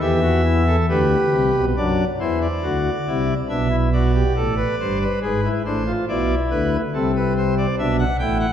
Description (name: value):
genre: classical, baroque-style 3-part fugue for pipe organ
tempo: 70 BPM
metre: 4/4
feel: straight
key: unclear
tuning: A4 = 441 Hz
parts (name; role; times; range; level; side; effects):
- pipe organ, cornet; solo; 0.0-8.5 s; G1 to G5; -17 LUFS; equal; none
room: wet scoring stage reverb, RT60 1.7 s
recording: heard from further back in the room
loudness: -18 LUFS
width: side -9 dB against mid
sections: 0.0-1.8 A section; 1.8-8.5 B section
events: none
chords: 0.0 Em; 1.8 D7; 3.5 G/B; 5.2 E7/G#; 6.9 Am/C